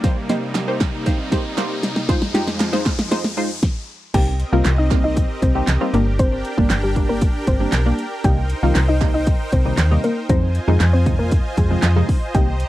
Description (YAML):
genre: dance-pop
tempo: 117 BPM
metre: 4/4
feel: straight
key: C minor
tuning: A4 = 440 Hz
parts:
  - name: punchy chord stab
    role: accompaniment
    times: 0.0-12.5 s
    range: C3 to C5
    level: -23 LUFS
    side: right 1 dB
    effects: chorus, phaser, sidechain pumping
  - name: supersaw pad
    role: sustained chords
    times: 0.0-12.7 s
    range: F2 to Bb5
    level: -28 LUFS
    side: equal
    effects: sidechain pumping
  - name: pop drum kit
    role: drums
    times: 0.0-12.7 s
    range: crash cymbal, handclaps, hi-hat, kick drum, snare drum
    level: -19 LUFS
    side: equal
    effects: none
  - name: riser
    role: sound effects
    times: 0.0-3.6 s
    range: none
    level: -31 LUFS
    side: left 1 dB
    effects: none
  - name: group handclap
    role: percussion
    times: 0.5-12.0 s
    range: none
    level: -29 LUFS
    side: right 13 dB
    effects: none
  - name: soft round pluck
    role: melody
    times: 4.1-12.6 s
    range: G3 to G5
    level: -24 LUFS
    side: left 2 dB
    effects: chorus, sidechain pumping, slapback echo
  - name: slap-like FM bass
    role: bass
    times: 4.1-12.6 s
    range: G1 to F2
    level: -18 LUFS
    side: equal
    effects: sidechain pumping
room: little or no reverb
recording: dry, close 1970s-style studio recording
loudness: -16 LUFS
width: side -15 dB against mid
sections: 0.0-4.1 A section; 4.1-12.7 B section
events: build-up 0.0-4.1; drum fill 0.0-3.6; riser 0.0-4.1; stop 3.6-4.1; drop 4.1-12.7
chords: 0.0 Cm7; 2.1 Fm7; 4.1 Cm7; 5.9 Gm; 8.2 Cm7; 10.3 Fm7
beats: | 0.04 0.55 1.06 1.58 | 2.09 2.60 3.12 3.63 | 4.14 4.65 5.17 5.68 | 6.19 6.71 7.22 7.73 | 8.24 8.76 9.27 9.78 | 10.29 10.81 11.32 11.83 | 12.35